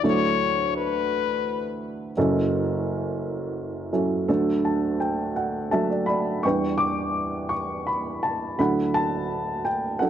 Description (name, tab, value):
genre	folk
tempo	84 BPM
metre	3/4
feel	straight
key	unclear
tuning	A4 = 441 Hz
part	dark upright piano	melody	0.0-10.1 s	F#1 to D6	-23 LUFS	right 1 dB	none
part	stopped French horn	second line	0.1-1.8 s	B4 to C#5	-25 LUFS	left 11 dB	none
room	light reverb, small room ambience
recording	1960s-style stereo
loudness	-22 LUFS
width	side -10 dB against mid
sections	0.0-6.4 A section; 6.4-10.1 B section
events	French horn solo 0.0-6.4; upright piano fill 4.3-6.4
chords	0.0 Dadd9; 2.2 F#m7; 4.3 D; 6.4 Em7; 8.6 Dadd9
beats	| 0.04 0.75 1.46 | 2.17 2.87 3.58 | 4.29 5.00 5.72 | 6.44 7.16 7.88 | 8.59 9.30 10.02